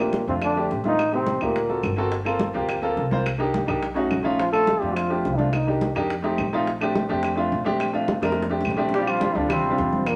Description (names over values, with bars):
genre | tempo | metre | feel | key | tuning
Afro-Cuban jazz | 211 BPM | 4/4 | straight | Bb major | A4 = 440 Hz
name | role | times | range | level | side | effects
clear trombone | melody | 0.0-2.0, 4.4-5.9, 8.9-10.2 s | Bb3 to A4 | -27 LUFS | equal | none
mellow trombone | second line | 0.0-1.9, 4.4-5.9, 8.9-10.2 s | Bb2 to A3 | -33 LUFS | equal | none
warm upright piano | accompaniment | 0.0-10.1 s | G3 to C5 | -26 LUFS | equal | none
upright bass | bass | 0.0-10.2 s | G1 to F2 | -33 LUFS | equal | none
bongos | percussion | 0.0-10.2 s | none | -35 LUFS | equal | none
claves | percussion | 0.0-10.2 s | none | -37 LUFS | equal | none
congas | percussion | 0.1-10.2 s | none | -35 LUFS | equal | none
room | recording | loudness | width
moderate large studio reverb, RT60 1.0 s | none | -23 LUFS | mono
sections
0.0-8.9 A section; 8.9-10.2 B section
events
drum fill 8.2-8.9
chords
0.0 Bbmaj13; 1.0 Am7b5; 1.6 D7b13; 2.1 Gm11; 3.3 Cm7; 3.8 B9; 4.4 Bbmaj7; 5.5 Cm7; 6.1 F7; 6.7 Bbmaj13; 8.9 Bb69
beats
0.13 0.42 0.70 | 0.98 1.27 1.55 1.84 | 2.12 2.40 2.69 2.97 | 3.26 3.54 3.83 4.11 | 4.39 4.68 4.96 5.25 | 5.53 5.81 6.10 6.38 | 6.67 6.95 7.23 7.52 | 7.80 8.08 8.37 8.65 | 8.94 9.22 9.50 9.79 | 10.07